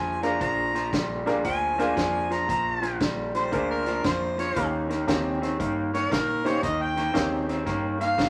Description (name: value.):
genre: electric blues shuffle.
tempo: 116 BPM.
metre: 4/4.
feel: swing 66% on 8ths.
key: Bb mixolydian.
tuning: A4 = 440 Hz.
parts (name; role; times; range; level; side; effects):
clear harmonica; second line; 0.0-8.3 s; Bb4 to Bb5; -29 LUFS; equal; overdrive.
electric guitar through a small old amp; riff; 0.0-8.3 s; Bb2 to C4; -31 LUFS; equal; spring reverb.
vintage muted fingered electric bass; bass; 0.0-8.3 s; Ab1 to Bb2; -38 LUFS; equal; none.
bright upright piano; accompaniment; 0.2-7.9 s; Bb3 to C5; -32 LUFS; equal; none.
natural country drum kit; drums; 0.2-8.3 s; hi-hat, kick drum, snare drum; -33 LUFS; equal; none.
room: moderate large studio reverb, RT60 1.1 s.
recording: vinyl crackle.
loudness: -26 LUFS.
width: mono.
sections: 0.0-8.3 A section.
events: harmonica solo 0.0-8.3.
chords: 0.0 Bb7; 4.6 Eb7.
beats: | 0.40 0.92 1.45 1.97 | 2.48 3.00 3.52 4.04 | 4.56 5.08 5.60 6.12 | 6.63 7.15 7.67 8.18.